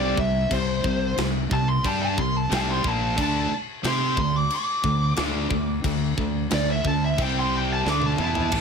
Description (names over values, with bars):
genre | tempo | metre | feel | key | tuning
heavy metal | 90 BPM | 4/4 | straight | unclear | A4 = 438 Hz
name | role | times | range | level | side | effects
high-gain lead guitar | melody | 0.0-8.5 s | C5 to D6 | -26 LUFS | equal | distortion, digital delay
distorted electric guitar | riff | 0.0-8.6 s | A2 to C5 | -29 LUFS | left 12 dB | overdrive
distorted electric guitar | riff | 0.0-8.5 s | Bb2 to C5 | -29 LUFS | right 10 dB | distortion
sludgy distorted guitar | riff | 0.0-8.6 s | A2 to C5 | -31 LUFS | right 2 dB | overdrive
fuzz fingered electric bass | bass | 0.0-8.6 s | A1 to C3 | -29 LUFS | equal | overdrive
tight metal drum kit | drums | 0.2-8.6 s | crash cymbal, kick drum, snare drum, toms | -29 LUFS | equal | none
room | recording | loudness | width
light reverb | none | -21 LUFS | side -6 dB against mid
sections
0.0-8.5 A section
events
lead electric guitar solo 0.0-8.5; drum fill 7.9-8.5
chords
0.0 C5; 3.2 D5; 7.2 C5; 7.9 D5